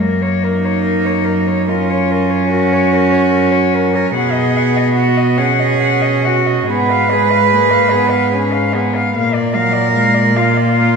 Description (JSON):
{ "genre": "classical, lyrical piece for cello ensemble", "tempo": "49 BPM (dotted quarters)", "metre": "12/8", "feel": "rubato", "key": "unclear", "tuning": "A4 = 440 Hz", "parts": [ { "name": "warm cello", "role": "melody", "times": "0.0-11.0 s", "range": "Ab4 to F#5", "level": "-19 LUFS", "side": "left 6 dB", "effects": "none" }, { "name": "warm cello", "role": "accompaniment", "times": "0.0-11.0 s", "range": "Gb3 to Db4", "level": "-18 LUFS", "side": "left 1 dB", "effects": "none" }, { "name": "warm cello", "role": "bass", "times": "0.0-11.0 s", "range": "Gb2 to B2", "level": "-18 LUFS", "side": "right 2 dB", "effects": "none" }, { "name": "rich cello", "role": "second line", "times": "0.4-11.0 s", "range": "Eb4 to Cb5", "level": "-16 LUFS", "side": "right 5 dB", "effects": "none" } ], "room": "wet recital hall reverb, RT60 1.5 s", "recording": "heard from further back in the room", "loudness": "-12 LUFS", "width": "side -5 dB against mid", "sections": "0.0-11.0 A section", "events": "none", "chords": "0.0 Gb; 4.2 B; 6.7 Fdim/Ab; 9.1 Bb", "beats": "0.42 1.68 2.93 | 4.16 5.38 6.69 7.92 | 9.14 10.36" }